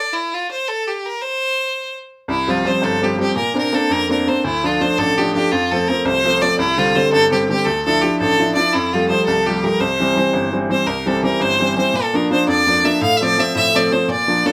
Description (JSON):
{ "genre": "celtic folk, Celtic jig", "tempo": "112 BPM (dotted quarters)", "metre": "6/8", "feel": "straight", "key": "C mixolydian", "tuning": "A4 = 445 Hz", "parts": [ { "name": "clear fiddle", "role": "melody", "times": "0.0-14.5 s", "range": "E4 to F5", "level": "-20 LUFS", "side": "equal", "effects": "none" }, { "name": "bright upright piano", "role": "accompaniment", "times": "2.3-14.5 s", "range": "G1 to E4", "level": "-20 LUFS", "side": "equal", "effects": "none" } ], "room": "moderate studio reverb, RT60 0.6 s", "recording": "none", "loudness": "-17 LUFS", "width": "mono", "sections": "0.0-2.3 A section; 2.3-10.9 A section; 10.9-14.5 B section", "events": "none", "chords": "0.0 N.C.; 2.3 Csus4; 3.4 Bbadd9; 4.4 Dm; 5.5 F; 6.6 Csus2; 7.7 Dmadd9; 8.7 Fadd9; 9.8 C; 11.9 Bb; 13.0 F/A", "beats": "| 0.13 0.67 | 1.21 1.75 | 2.29 2.83 | 3.37 3.90 | 4.44 4.98 | 5.52 6.05 | 6.59 7.13 | 7.66 8.20 | 8.73 9.27 | 9.80 10.34 | 10.87 11.41 | 11.94 12.47 | 13.01 13.54 | 14.08" }